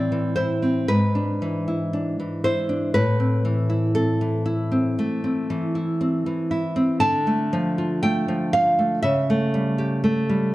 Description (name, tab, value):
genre	romantic piece for solo classical guitar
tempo	59 BPM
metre	4/4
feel	rubato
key	A minor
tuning	A4 = 440 Hz
part	nylon-string guitar	solo	0.0-10.5 s	G#2 to A5	-20 LUFS	equal	none
room	moderate recital hall reverb, RT60 1.8 s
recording	dark, warm production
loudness	-20 LUFS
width	side -17 dB against mid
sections	0.0-10.5 A section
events	none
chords	0.0 Am; 0.9 E7/G#; 3.0 Am; 7.0 Dm; 9.1 A7/C#